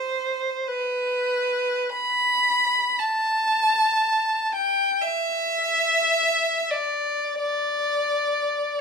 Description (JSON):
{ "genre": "classical, free, expressive piece for unaccompanied violin", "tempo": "free time", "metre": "none", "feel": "none", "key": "unclear", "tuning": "A4 = 440 Hz", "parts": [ { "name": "rich violin", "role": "solo", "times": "0.0-8.8 s", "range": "B4 to B5", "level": "-21 LUFS", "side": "equal", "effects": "none" } ], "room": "moderate stone room reverb, RT60 1.1 s", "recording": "none", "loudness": "-21 LUFS", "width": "side -5 dB against mid", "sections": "0.0-8.8 A section", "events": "none", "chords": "none" }